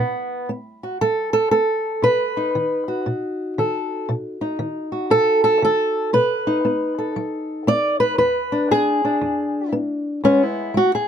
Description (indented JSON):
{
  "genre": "acoustic country blues, solo or duo",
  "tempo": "117 BPM",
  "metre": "4/4",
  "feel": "swing 64% on 8ths",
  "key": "unclear",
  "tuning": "A4 = 439 Hz",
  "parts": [
    { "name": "fingerpicked old ladder-braced acoustic guitar", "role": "solo", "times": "0.0-11.1 s", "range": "E2 to D5", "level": "-18 LUFS", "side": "equal", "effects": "none" }
  ],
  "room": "light reverb",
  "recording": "close, detailed microphones",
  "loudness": "-18 LUFS",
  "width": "side -8 dB against mid",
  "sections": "0.0-10.2 A section",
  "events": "steel-string acoustic guitar solo 0.0-10.2",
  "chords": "0.0 B7; 8.2 E7; 10.2 E"
}